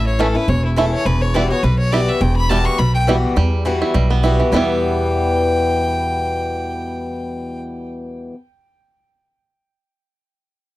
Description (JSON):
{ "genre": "bluegrass", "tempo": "208 BPM", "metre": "4/4", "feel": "swing 55% on 8ths", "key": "E dorian", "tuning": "A4 = 439 Hz", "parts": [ { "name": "clear fiddle", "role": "melody", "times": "0.0-7.6 s", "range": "E4 to C#6", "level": "-23 LUFS", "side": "left 1 dB", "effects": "tape echo" }, { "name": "picked swing-style acoustic guitar", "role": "accompaniment", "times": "0.0-8.3 s", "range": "E2 to F#4", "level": "-21 LUFS", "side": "left 3 dB", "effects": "none" }, { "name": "upright bass", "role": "bass", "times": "0.0-8.3 s", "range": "E1 to E2", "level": "-19 LUFS", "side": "equal", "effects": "none" }, { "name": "bluegrass banjo", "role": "melody", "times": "0.2-8.3 s", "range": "E3 to E4", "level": "-21 LUFS", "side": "right 4 dB", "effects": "none" } ], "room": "light reverb", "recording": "dry, close 1970s-style studio recording", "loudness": "-15 LUFS", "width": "side -17 dB against mid", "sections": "0.0-3.4 A section; 3.4-4.5 B section; 4.5-6.8 C section", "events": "none", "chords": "0.0 A; 1.1 Emadd9; 4.5 Em", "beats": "0.19 0.48 0.77 | 1.06 1.35 1.64 1.92 | 2.21 2.50 2.79 3.08 | 3.37 3.66 3.94 4.23 | 4.52 4.81 5.10 5.39 | 5.68 5.97 6.26 6.54" }